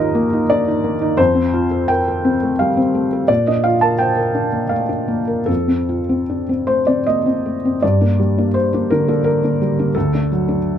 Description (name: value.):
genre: neoclassical minimalist piano.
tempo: 74-88 BPM.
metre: 3/4.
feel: rubato.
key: G minor.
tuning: A4 = 439 Hz.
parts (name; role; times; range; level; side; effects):
felt-muted upright piano; solo; 0.0-10.8 s; D2 to A5; -15 LUFS; equal; none.
room: wet booth ambience, RT60 0.3 s.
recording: heard from further back in the room.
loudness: -15 LUFS.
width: side -9 dB against mid.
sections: 0.0-7.8 A section; 7.8-10.8 B section.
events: none.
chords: 0.0 Eb; 1.2 F; 3.3 Bb; 5.5 F; 7.8 Gm; 9.9 D.